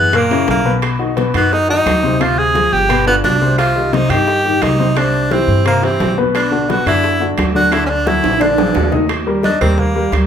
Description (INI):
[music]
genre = Afro-Cuban jazz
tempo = 174 BPM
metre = 4/4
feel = straight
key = unclear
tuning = A4 = 440 Hz
[part]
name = edgy tenor saxophone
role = melody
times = 0.0-10.1 s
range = A#3 to Ab4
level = -16 LUFS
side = right 1 dB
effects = none
[part]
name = warm grand piano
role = accompaniment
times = 0.0-10.2 s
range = A#2 to Eb5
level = -17 LUFS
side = left 3 dB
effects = none
[part]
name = upright bass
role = bass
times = 0.0-10.3 s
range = G1 to G2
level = -20 LUFS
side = equal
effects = none
[part]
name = bongos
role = percussion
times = 0.1-10.3 s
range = none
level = -27 LUFS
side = left 2 dB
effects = none
[part]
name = claves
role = percussion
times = 0.1-10.3 s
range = none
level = -29 LUFS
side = right 6 dB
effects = none
[part]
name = congas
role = percussion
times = 0.1-10.3 s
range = none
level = -24 LUFS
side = equal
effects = none
[part]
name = timbales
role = percussion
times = 0.1-10.3 s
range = none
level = -24 LUFS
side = right 6 dB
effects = none
[sound]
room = moderate large studio reverb, RT60 1.2 s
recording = band playing live in one room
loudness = -12 LUFS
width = side -8 dB against mid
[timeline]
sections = 0.0-9.1 A section; 9.1-10.3 B section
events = drum fill 8.2-9.1; tenor saxophone solo 9.1-10.3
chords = 0.1 F#7; 0.8 B; 2.2 Dm7b5; 2.9 G7; 3.6 Cm; 5.0 Cadd9; 6.3 Bm; 7.7 Dadd9; 8.4 Bb7; 9.1 Ebmaj7